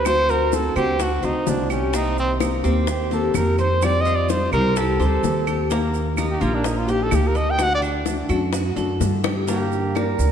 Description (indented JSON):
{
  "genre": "latin, Cuban son and guajira",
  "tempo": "127 BPM",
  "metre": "4/4",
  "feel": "straight",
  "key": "unclear",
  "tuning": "A4 = 436 Hz",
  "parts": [
    { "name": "clear trumpet", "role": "melody", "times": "0.0-7.8 s", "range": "C4 to G5", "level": "-23 LUFS", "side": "equal", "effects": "none" },
    { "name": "nylon-string guitar", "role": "accompaniment", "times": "0.0-10.3 s", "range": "C3 to G4", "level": "-26 LUFS", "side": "left 3 dB", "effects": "none" },
    { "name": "Cuban tres", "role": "arpeggios", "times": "0.0-10.3 s", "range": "Bb3 to C5", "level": "-27 LUFS", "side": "right 1 dB", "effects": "none" },
    { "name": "upright bass", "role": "bass", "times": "0.0-10.3 s", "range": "Bb1 to G2", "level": "-23 LUFS", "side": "right 1 dB", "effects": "none" },
    { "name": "bongos", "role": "percussion", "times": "0.1-10.3 s", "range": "none", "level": "-29 LUFS", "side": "left 6 dB", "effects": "none" },
    { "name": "claves", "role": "percussion", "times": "0.1-10.2 s", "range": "none", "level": "-35 LUFS", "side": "right 6 dB", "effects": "none" },
    { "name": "maracas", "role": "percussion", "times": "0.1-10.3 s", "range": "none", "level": "-38 LUFS", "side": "right 8 dB", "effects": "none" },
    { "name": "concert flute", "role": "second line", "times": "9.5-10.3 s", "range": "G4 to Bb4", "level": "-25 LUFS", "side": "right 6 dB", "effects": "none" }
  ],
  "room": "moderate scoring stage reverb, RT60 1.8 s",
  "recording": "dark, warm production",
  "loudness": "-18 LUFS",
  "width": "side -8 dB against mid",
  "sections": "0.0-9.5 A section",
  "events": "trumpet solo 0.0-9.5; drum fill 9.2",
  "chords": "0.1 D7; 1.9 Cm7; 3.8 Fadd9; 5.7 Eb; 7.6 D; 9.5 Gm"
}